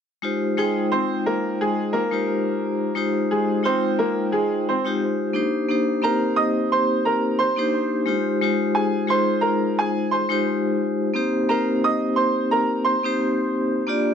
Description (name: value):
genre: hip hop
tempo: 88 BPM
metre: 4/4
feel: swing 55% on 16ths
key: F dorian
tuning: A4 = 440 Hz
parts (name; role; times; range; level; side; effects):
- vibraphone with hard mallets; accompaniment; 0.2-14.1 s; Ab3 to G5; -21 LUFS; left 2 dB; high-pass filter, low-pass filter
- bright upright piano; melody; 0.6-13.8 s; Ab3 to Eb6; -23 LUFS; right 2 dB; high-pass filter, low-pass filter, digital delay
room: light reverb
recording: none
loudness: -19 LUFS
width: side -7 dB against mid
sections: 0.2-5.7 A section; 5.7-14.1 B section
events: none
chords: 0.2 Fm9; 5.4 Cm9; 8.1 Fm9; 11.2 Eb6